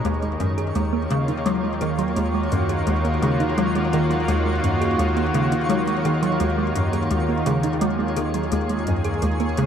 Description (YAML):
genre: ambient, sequencer-driven space music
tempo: 85 BPM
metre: 4/4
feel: straight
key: unclear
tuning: A4 = 441 Hz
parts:
  - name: lush unison pad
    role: sustained chords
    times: 0.0-9.7 s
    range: D#3 to A#4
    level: -24 LUFS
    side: equal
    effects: chorus
  - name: thumb-piano-like synth pluck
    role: arpeggios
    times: 0.0-9.7 s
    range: G#2 to G#4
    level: -27 LUFS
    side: moving between left 2 dB and right 6 dB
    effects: chorus, auto-pan, ping-pong delay
  - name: tight sequencer bass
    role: riff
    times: 0.0-9.7 s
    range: D#2 to F#3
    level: -24 LUFS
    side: left 1 dB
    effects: ensemble chorus, ping-pong delay
  - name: analog drone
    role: bass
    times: 0.0-9.7 s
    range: D#2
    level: -30 LUFS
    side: equal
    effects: chorus
  - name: electronic hi-hat and congas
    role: percussion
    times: 0.0-9.7 s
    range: none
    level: -39 LUFS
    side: left 3 dB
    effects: ping-pong delay
  - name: twinkling granular texture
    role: texture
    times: 0.0-9.7 s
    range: C#5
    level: -31 LUFS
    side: right 2 dB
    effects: built-in reverb
room: wet spring reverb, RT60 2.7 s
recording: echo-heavy mix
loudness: -19 LUFS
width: side -8 dB against mid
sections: 0.0-9.7 A section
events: none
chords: 0.0 D#m7